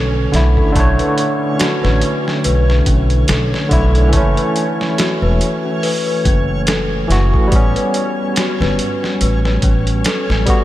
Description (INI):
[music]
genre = trip hop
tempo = 71 BPM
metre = 4/4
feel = swing 57% on 16ths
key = B minor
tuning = A4 = 440 Hz
[part]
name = barky tine electric piano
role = accompaniment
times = 0.0-10.6 s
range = D3 to C#5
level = -18 LUFS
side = equal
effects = tremolo, tape echo
[part]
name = celesta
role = arpeggios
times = 0.0-10.6 s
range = C#4 to B4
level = -22 LUFS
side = left 2 dB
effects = analog delay
[part]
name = upright bass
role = bass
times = 0.0-10.5 s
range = E1 to B1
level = -16 LUFS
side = equal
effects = none
[part]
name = backwards swelling texture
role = texture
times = 0.0-10.6 s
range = C#4 to C#5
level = -26 LUFS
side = right 1 dB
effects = built-in reverb
[part]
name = boom bap sampler-style drum kit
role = drums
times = 0.3-10.6 s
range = hi-hat, kick drum, snare drum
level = -18 LUFS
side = equal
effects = studio reverb
[sound]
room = moderate huge ambient reverb, RT60 4.7 s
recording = dreamy mix soaked in reverb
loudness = -13 LUFS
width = side -14 dB against mid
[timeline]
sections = 0.0-10.6 A section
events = none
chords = 0.0 Bm9; 4.1 F#m7; 7.5 A9